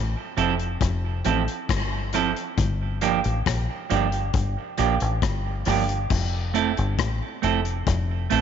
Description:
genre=roots reggae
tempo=68 BPM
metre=4/4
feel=straight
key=F major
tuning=A4 = 440 Hz
part: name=deep dub fingered electric bass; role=bass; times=0.0-8.4 s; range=F1 to Bb1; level=-25 LUFS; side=left 1 dB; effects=none
part: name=semi-hollow electric guitar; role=accompaniment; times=0.4-8.4 s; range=F3 to A4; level=-25 LUFS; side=right 10 dB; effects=spring reverb, tape echo
part: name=vintage drum kit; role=drums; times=0.4-8.4 s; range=crash cymbal, hi-hat, kick drum, rim click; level=-28 LUFS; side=left 6 dB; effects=none
room=light reverb, small room ambience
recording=1960s-style stereo with parts hard left and right, nothing above 7.7 kHz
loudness=-22 LUFS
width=side -8 dB against mid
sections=0.0-6.1 A section; 6.1-8.4 B section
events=none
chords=0.0 Fmaj7; 2.6 Gm7; 6.1 Fmaj7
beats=0.81 1.69 | 2.58 3.46 4.34 5.22 | 6.11 6.99 7.87

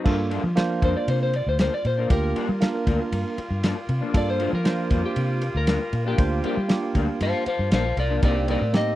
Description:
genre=straight-eighth soul blues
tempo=118 BPM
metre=4/4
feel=straight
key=G minor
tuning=A4 = 439 Hz
part: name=barky tine electric piano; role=accompaniment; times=0.0-9.0 s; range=Bb3 to C5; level=-27 LUFS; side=right 5 dB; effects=none
part: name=electric guitar through a small old amp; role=stabs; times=0.0-8.9 s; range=G2 to Eb4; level=-31 LUFS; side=left 6 dB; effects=ensemble chorus
part: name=mellow horn section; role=sustained chords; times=0.1-9.0 s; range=G3 to F4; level=-35 LUFS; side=equal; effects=none
part: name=vintage muted fingered electric bass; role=bass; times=0.1-9.0 s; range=Bb1 to G3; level=-25 LUFS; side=equal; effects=none
part: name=warm soul drum kit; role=drums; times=0.1-8.9 s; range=crash cymbal, kick drum, ride cymbal, snare drum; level=-22 LUFS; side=equal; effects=none
part: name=electric slide guitar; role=melody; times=0.8-9.0 s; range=G4 to F5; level=-27 LUFS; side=left 2 dB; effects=none
room=light reverb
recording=dry, close 1970s-style studio recording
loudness=-21 LUFS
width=side -14 dB against mid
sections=0.1-9.0 A section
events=electric slide guitar solo 0.1-9.0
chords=0.1 Gm7; 8.2 Cm7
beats=| 0.06 0.57 1.08 1.59 | 2.10 2.61 3.12 3.63 | 4.14 4.66 5.17 5.68 | 6.19 6.70 7.21 7.72 | 8.23 8.74

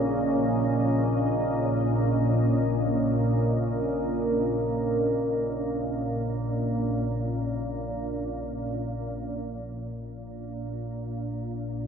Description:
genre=dark ambient drone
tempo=free time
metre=none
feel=none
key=unclear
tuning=A4 = 440 Hz
part: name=deep dark ambient pad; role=sustained chords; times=0.0-9.2 s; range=Bb2 to Eb5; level=-28 LUFS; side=equal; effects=chorus, built-in reverb
part: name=organ-like drone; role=drone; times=0.0-11.9 s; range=Bb1 to Bb2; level=-27 LUFS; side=equal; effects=ensemble chorus, built-in reverb
room=wet spring reverb, RT60 2.7 s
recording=none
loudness=-25 LUFS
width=side -7 dB against mid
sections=0.0-9.2 A section; 9.2-11.9 B section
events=filter sweep on synth drone 9.2-11.9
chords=0.0 Dbsus2/Bb; 9.2 N.C.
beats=free time

